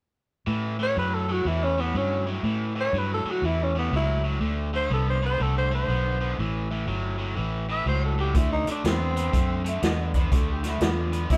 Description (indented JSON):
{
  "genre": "electric blues shuffle",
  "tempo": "122 BPM",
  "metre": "4/4",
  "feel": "swing 65% on 8ths",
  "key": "unclear",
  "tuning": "A4 = 438 Hz",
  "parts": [
    { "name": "overdriven electric guitar", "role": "riff", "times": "0.5-11.4 s", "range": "A2 to B3", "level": "-34 LUFS", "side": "equal", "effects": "none" },
    { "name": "vintage muted fingered electric bass", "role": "bass", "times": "0.5-11.4 s", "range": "G1 to A2", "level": "-29 LUFS", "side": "equal", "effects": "none" },
    { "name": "growling tenor saxophone", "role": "melody", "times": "0.8-11.4 s", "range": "B3 to E5", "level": "-30 LUFS", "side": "equal", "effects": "none" },
    { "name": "vintage drum kit", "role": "drums", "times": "8.3-11.4 s", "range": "hi-hat, kick drum, snare drum", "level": "-27 LUFS", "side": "equal", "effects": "none" },
    { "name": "electric guitar at the edge of break-up", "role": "second line", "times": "9.7-11.2 s", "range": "E4 to E5", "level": "-36 LUFS", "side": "equal", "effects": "phaser" }
  ],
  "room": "moderate studio reverb, RT60 0.8 s",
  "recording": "band playing live in one room",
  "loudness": "-26 LUFS",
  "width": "mono",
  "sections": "0.5-11.4 A section",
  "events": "none",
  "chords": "0.5 A7; 4.4 D5; 6.4 A7; 8.3 D7; 10.3 D5"
}